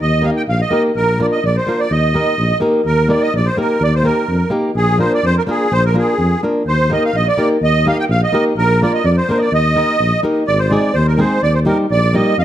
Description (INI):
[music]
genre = balkan folk, Balkan wedding band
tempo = 126 BPM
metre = 2/4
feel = straight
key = Eb major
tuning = A4 = 440 Hz
[part]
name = musette accordion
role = melody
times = 0.0-12.4 s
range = Ab4 to G5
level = -17 LUFS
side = right 2 dB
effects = none
[part]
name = dark tuba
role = bass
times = 0.0-12.4 s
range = Ab1 to F2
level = -17 LUFS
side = equal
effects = none
[part]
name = flamenco guitar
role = accompaniment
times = 0.2-12.3 s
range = G3 to Bb4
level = -18 LUFS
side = left 1 dB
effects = none
[sound]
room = moderate recital hall reverb, RT60 1.5 s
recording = close, detailed microphones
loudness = -13 LUFS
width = side -12 dB against mid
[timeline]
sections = 0.0-2.9 A section; 2.9-10.5 A section; 10.5-12.4 B section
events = none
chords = 0.0 Eb; 1.0 Bb; 1.9 Eb; 4.8 Bb; 6.7 Eb; 8.6 Bb; 9.5 Eb; 10.5 Ab; 11.4 Eb